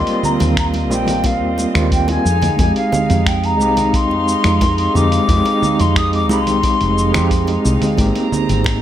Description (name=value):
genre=sunset chillout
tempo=89 BPM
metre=4/4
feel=straight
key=unclear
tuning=A4 = 438 Hz
part: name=wooden flute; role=melody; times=0.0-7.6 s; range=F5 to Eb6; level=-20 LUFS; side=left 2 dB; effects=digital delay
part: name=overdriven tine electric piano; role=accompaniment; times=0.0-8.8 s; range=G3 to G4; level=-19 LUFS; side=moving between left 3 dB and right 5 dB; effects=fast tremolo, auto-pan, vintage 12-bit sampler grit, digital delay
part: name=rich chamber string section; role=sustained chords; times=0.0-8.8 s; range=Ab3 to Bb5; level=-24 LUFS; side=right 1 dB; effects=none
part: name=dusty soul sampler-style drum kit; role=drums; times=0.1-8.8 s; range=cabasa, congas, finger snaps, hi-hat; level=-22 LUFS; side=right 2 dB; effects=overdrive, studio reverb
part: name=woody fretless electric bass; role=bass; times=0.4-8.8 s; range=F1 to F2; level=-18 LUFS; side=equal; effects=lush chorus
part: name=congas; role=percussion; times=0.4-8.8 s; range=none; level=-25 LUFS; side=right 2 dB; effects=none
part: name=electronic kick drum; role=drums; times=0.6-8.8 s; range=none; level=-19 LUFS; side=equal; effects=studio reverb
room=light reverb, studio reverb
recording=none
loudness=-13 LUFS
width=side -11 dB against mid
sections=0.0-8.8 A section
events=none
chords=0.0 Eb69; 2.3 Fm9; 8.0 Abmaj9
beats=0.57 1.24 1.92 | 2.59 3.27 3.94 4.61 | 5.29 5.96 6.64 7.31 | 7.98 8.66